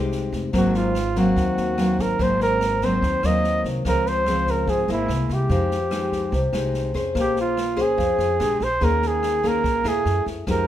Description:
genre	bossa nova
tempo	145 BPM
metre	4/4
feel	straight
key	unclear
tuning	A4 = 441 Hz
part	nylon-string guitar	accompaniment	0.0-10.7 s	Ab2 to C5	-23 LUFS	left 2 dB	none
part	upright bass	bass	0.0-10.7 s	F1 to Gb2	-26 LUFS	equal	none
part	swinging big-band drum kit	drums	0.1-10.6 s	kick drum, rim click, snare drum	-31 LUFS	equal	none
part	warm flugelhorn	melody	0.6-10.7 s	E4 to Eb5	-23 LUFS	right 2 dB	none
room	light reverb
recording	minimal, uncompressed stereo recording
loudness	-19 LUFS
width	side -11 dB against mid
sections	0.0-10.7 A section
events	none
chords	0.0 Fm9; 0.5 Ab9; 3.8 Dbmaj7; 5.1 C7b13; 5.5 Fm9; 7.2 Bbm9; 8.4 Bb13; 8.8 Eb7sus4; 10.1 Gbm9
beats	0.12 | 0.53 0.95 1.36 1.78 | 2.19 2.60 3.02 3.43 | 3.85 4.26 4.68 5.09 | 5.50 5.92 6.33 6.75 | 7.16 7.57 7.99 8.40 | 8.81 9.23 9.64 10.06 | 10.47

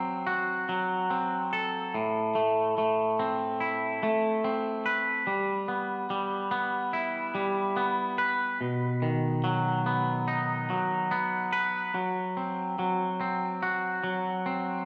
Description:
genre	rock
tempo	72 BPM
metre	4/4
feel	straight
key	E harmonic minor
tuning	A4 = 440 Hz
part	twangy electric guitar	solo	0.0-14.9 s	A2 to B4	-29 LUFS	equal	spring reverb, slapback echo, digital delay
room	wet concert hall reverb, RT60 2.3 s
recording	big arena sound, studio reverb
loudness	-29 LUFS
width	mono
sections	0.0-14.9 A section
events	none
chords	0.0 F#dim; 1.9 Amadd9; 5.3 Em/G; 8.6 B; 12.0 F#(b5, no3)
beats	0.28 1.11 | 1.94 2.78 3.61 4.44 | 5.28 6.11 6.95 7.78 | 8.62 9.45 10.28 11.12 | 11.96 12.79 13.63 14.47

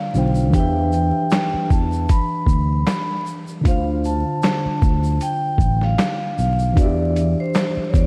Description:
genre	lo-fi hip hop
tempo	77 BPM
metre	4/4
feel	swing 56% on 16ths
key	unclear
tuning	A4 = 442 Hz
part	vibraphone with medium mallets	melody	0.0-8.1 s	C5 to B5	-27 LUFS	equal	low-pass filter, delay
part	tine electric piano	accompaniment	0.0-8.1 s	D3 to G5	-26 LUFS	equal	overdrive, cassette tape, low-pass filter
part	lo-fi sampler-style drum kit	drums	0.1-8.1 s	handclaps, hi-hat, kick drum, shaker, snare drum	-22 LUFS	equal	none
part	tube shaker	percussion	0.1-8.1 s	none	-48 LUFS	equal	none
part	sustaining fretless electric bass	bass	0.2-8.1 s	A1 to E2	-22 LUFS	equal	none
room	moderate lush hall reverb, RT60 2.8 s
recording	dreamy mix soaked in reverb, vinyl crackle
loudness	-19 LUFS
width	mono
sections	0.0-8.1 A section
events	none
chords	0.0 Dm7; 0.5 Em7; 3.7 Dm7; 6.8 Em7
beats	| 0.54 1.31 2.09 2.87 | 3.65 4.43 5.21 5.99 | 6.77 7.55

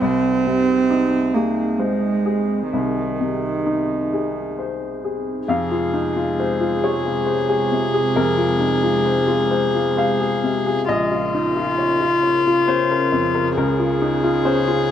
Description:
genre	neoclassical piano and strings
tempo	67 BPM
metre	3/4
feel	rubato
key	F minor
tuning	A4 = 435 Hz
part	rich cello	second line	0.0-14.9 s	C3 to C4	-23 LUFS	right 4 dB	none
part	bright upright piano	accompaniment	0.0-14.9 s	Bb1 to F5	-21 LUFS	left 2 dB	none
part	warbly tape-like pad	sustained chords	0.0-14.9 s	Ab3 to Bb4	-28 LUFS	right 1 dB	chorus, built-in reverb
part	warm violin	melody	5.5-14.9 s	F4 to Ab4	-20 LUFS	left 2 dB	none
room	light reverb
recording	dark, warm production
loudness	-17 LUFS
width	side -10 dB against mid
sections	0.0-5.5 A section; 5.5-14.9 B section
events	none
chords	0.0 Ab/C; 5.5 Fm; 10.9 Bbm; 13.6 Db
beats	| 0.02 0.91 1.80 | 2.72 3.66 4.59 | 5.50 6.39 7.28 | 8.16 9.06 9.99 | 10.89 11.79 12.68 | 13.57 14.45

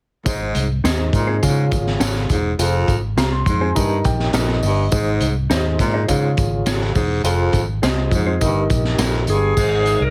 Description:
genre	uptempo 1960s-style soul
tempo	103 BPM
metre	4/4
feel	straight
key	Ab major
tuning	A4 = 444 Hz
part	reed electric piano	accompaniment	0.3-10.1 s	G2 to C6	-26 LUFS	equal	overdrive, fast tremolo
part	breathy baritone saxophone	riff	0.3-10.0 s	F2 to Bb2	-26 LUFS	equal	none
part	vintage muted fingered electric bass	bass	0.3-10.1 s	Fb1 to Db3	-23 LUFS	equal	none
part	crunchy breakbeat drum kit	drums	0.3-10.0 s	crash cymbal, hi-hat, kick drum, snare drum	-24 LUFS	equal	none
part	tambourine	percussion	0.3-10.0 s	none	-35 LUFS	equal	none
part	mellow electric guitar	stabs	0.8-9.1 s	Bb3 to Eb5	-28 LUFS	equal	none
part	bright tonewheel organ	melody	9.3-10.1 s	Ab4 to Bb4	-21 LUFS	equal	slow rotary speaker
room	little or no reverb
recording	heavily compressed radio sound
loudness	-19 LUFS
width	mono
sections	0.3-9.6 A section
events	reed electric piano fill 3.2-4.9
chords	0.3 Ab; 1.4 Db; 2.6 Fm; 3.8 Eb; 4.9 Ab; 6.1 Db; 7.2 Fm; 8.4 Eb/G; 9.6 Ab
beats	| 0.26 0.84 1.42 2.01 | 2.59 3.17 3.75 4.34 | 4.92 5.50 6.08 6.67 | 7.25 7.83 8.41 8.99 | 9.58

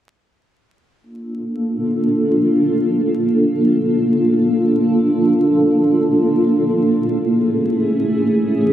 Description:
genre	drum and bass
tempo	free time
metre	none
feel	none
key	unclear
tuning	A4 = 440 Hz
part	granular cloud pad	sustained chords	1.2-8.7 s	A3 to A4	-14 LUFS	equal	built-in reverb
room	moderate lush hall reverb, RT60 2.7 s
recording	heavily compressed radio sound, multiband compression, vinyl crackle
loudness	-14 LUFS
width	side -11 dB against mid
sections	1.0-8.7 A section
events	filter sweep on ambient pad 1.0-8.7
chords	1.0 Bbmaj7; 6.9 Amaj7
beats	free time

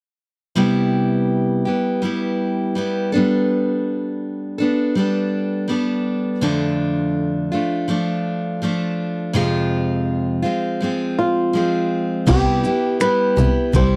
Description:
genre	acoustic pop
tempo	82 BPM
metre	4/4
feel	straight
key	C major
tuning	A4 = 439 Hz
part	picked steel-string acoustic guitar	accompaniment	0.6-14.0 s	F2 to A4	-21 LUFS	equal	none
part	flamenco guitar	melody	11.2-14.0 s	F4 to C5	-22 LUFS	equal	none
part	rich double bass	bass	12.3-13.8 s	C2	-20 LUFS	equal	none
part	dusty soul sampler-style drum kit	drums	12.3-13.9 s	crash cymbal, finger snaps, kick drum, shaker	-24 LUFS	equal	none
room	little or no reverb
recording	dry, close 1970s-style studio recording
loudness	-20 LUFS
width	mono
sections	0.6-12.3 A section; 12.3-14.0 B section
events	none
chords	0.6 Cmaj7; 3.1 Gadd9; 6.4 Dm/F; 9.3 Fm; 12.3 Cmaj7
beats	| 0.56 1.29 2.02 2.75 | 3.49 4.22 4.95 5.69 | 6.42 7.15 7.88 8.62 | 9.35 10.08 10.81 11.54 | 12.28 13.01 13.74

